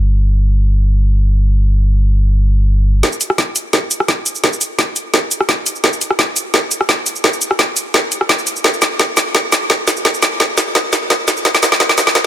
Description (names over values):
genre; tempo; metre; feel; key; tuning
liquid drum and bass; 171 BPM; 4/4; straight; unclear; A4 = 440 Hz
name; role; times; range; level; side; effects
saturated sub bass; bass; 0.0-3.0 s; G1; -11 LUFS; equal; tube saturation
electronic kick drum; drums; 3.0-12.2 s; none; -30 LUFS; equal; high-pass filter on kick
garage drum kit; drums; 3.0-12.2 s; cabasa, hi-hat, rim click, snare drum; -13 LUFS; equal; high-pass filter on snare, high-pass filter on hats, high-pass filter on perc
room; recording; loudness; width
light reverb; high-pass filter, low-pass filter; -12 LUFS; side -12 dB against mid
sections
0.0-3.0 A section; 3.0-12.3 B section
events
filter sweep 0.0-3.0; build-up 3.0-12.3; drum fill 3.0-12.3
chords
none